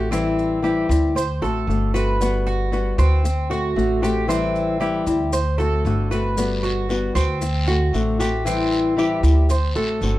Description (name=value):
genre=latin, Cuban son and guajira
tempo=115 BPM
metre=4/4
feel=straight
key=unclear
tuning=A4 = 440 Hz
part: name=flamenco guitar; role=accompaniment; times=0.0-10.2 s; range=D3 to F#4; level=-22 LUFS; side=left 2 dB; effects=none
part: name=Cuban tres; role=arpeggios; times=0.0-10.2 s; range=C4 to C5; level=-26 LUFS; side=right 3 dB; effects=none
part: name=upright bass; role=bass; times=0.0-10.2 s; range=G1 to D2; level=-22 LUFS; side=equal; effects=none
part: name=maracas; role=percussion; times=0.1-10.2 s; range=none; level=-38 LUFS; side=left 3 dB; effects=none
part: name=guiro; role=percussion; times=6.4-10.2 s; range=none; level=-34 LUFS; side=left 3 dB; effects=none
room=light reverb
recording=dark, warm production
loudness=-18 LUFS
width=side -16 dB against mid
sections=0.0-10.2 A section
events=none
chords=0.1 Am7; 1.2 D7; 2.2 Gmaj7; 3.2 D7; 4.3 Am7; 5.3 D7; 6.4 Gmaj7; 7.4 D7; 8.5 Am7; 9.5 D7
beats=| 0.12 0.64 1.16 1.68 | 2.20 2.72 3.24 3.77 | 4.29 4.81 5.33 5.85 | 6.37 6.89 7.42 7.94 | 8.46 8.98 9.50 10.02